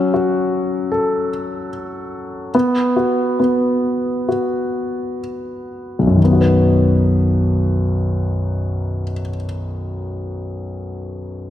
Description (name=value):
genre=pop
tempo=59-77 BPM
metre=4/4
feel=straight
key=B major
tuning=A4 = 440 Hz
part: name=warm concert grand piano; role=accompaniment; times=0.0-11.5 s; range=B1 to B4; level=-17 LUFS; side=left 1 dB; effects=none
room=moderate lush hall reverb, RT60 2.7 s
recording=none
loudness=-16 LUFS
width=side -12 dB against mid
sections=0.0-6.2 A section; 6.2-10.3 B section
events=slowing down 0.0-6.2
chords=0.0 F#m; 2.5 B5; 6.2 B